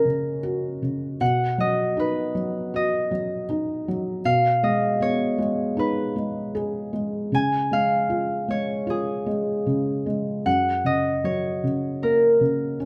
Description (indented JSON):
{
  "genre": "children's music, lullaby",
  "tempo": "77 BPM",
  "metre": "4/4",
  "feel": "rubato",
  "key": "F# major",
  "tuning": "A4 = 439 Hz",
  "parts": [
    { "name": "concert harp", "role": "melody", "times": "0.0-12.9 s", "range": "G#4 to G#5", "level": "-26 LUFS", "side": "equal", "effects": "none" },
    { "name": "felt-muted upright piano", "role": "accompaniment", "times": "0.0-12.9 s", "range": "F#2 to G#4", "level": "-27 LUFS", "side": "equal", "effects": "none" }
  ],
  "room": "light reverb, small room ambience",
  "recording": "rough home demo mix",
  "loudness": "-24 LUFS",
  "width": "mono",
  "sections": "0.0-12.9 A section",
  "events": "none",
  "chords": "0.0 F#; 1.2 B; 4.2 G#m/B; 7.3 C#; 10.5 F#"
}